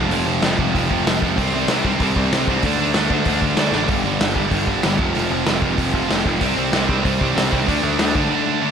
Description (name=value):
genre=punk rock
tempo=190 BPM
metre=4/4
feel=straight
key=unclear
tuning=A4 = 440 Hz
part: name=cranked stack guitar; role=riff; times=0.0-8.7 s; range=F2 to D4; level=-22 LUFS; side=right 12 dB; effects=overdrive
part: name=fuzz guitar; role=riff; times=0.0-8.7 s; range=F2 to D4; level=-26 LUFS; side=equal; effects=distortion
part: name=sludgy distorted guitar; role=riff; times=0.0-8.7 s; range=F2 to D4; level=-24 LUFS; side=left 12 dB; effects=overdrive
part: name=overdriven picked electric bass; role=bass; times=0.0-8.3 s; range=F1 to D2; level=-25 LUFS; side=equal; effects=none
part: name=raw garage drum kit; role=drums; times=0.1-8.2 s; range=hi-hat, kick drum, snare drum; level=-22 LUFS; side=equal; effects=none
room=light reverb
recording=none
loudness=-16 LUFS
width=side -7 dB against mid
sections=0.0-8.7 A section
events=drum fill 3.7; break 8.3-8.7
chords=0.0 F5; 1.4 C5; 2.6 D5; 3.9 G5; 5.0 F5; 6.4 C5; 7.7 D5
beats=| 0.11 0.43 0.74 1.06 | 1.37 1.69 2.00 2.32 | 2.63 2.95 3.26 3.58 | 3.89 4.21 4.52 4.84 | 5.16 5.47 5.79 6.10 | 6.42 6.73 7.04 7.36 | 7.67 7.99 8.30 8.62